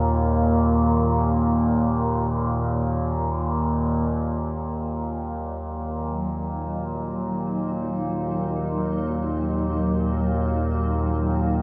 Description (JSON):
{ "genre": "dark ambient drone", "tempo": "free time", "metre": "none", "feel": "none", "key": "Eb minor", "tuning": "A4 = 441 Hz", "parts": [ { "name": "overtone-sweeping drone", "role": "drone", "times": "0.0-11.6 s", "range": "Eb2 to Bb2", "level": "-25 LUFS", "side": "equal", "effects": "chorus, built-in reverb, phaser" }, { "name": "bronze singing bowl", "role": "texture", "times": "0.0-11.6 s", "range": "Bb4", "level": "-47 LUFS", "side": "equal", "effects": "none" }, { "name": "granular cloud pad", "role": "sustained chords", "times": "6.1-11.6 s", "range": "Gb3 to Eb4", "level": "-30 LUFS", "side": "equal", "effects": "built-in reverb" } ], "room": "wet cathedral reverb, RT60 7.1 s", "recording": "dark, warm production", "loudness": "-24 LUFS", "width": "mono", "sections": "0.0-4.6 A section; 4.6-11.6 B section", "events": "none", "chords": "0.0 Eb5; 4.6 Ebm" }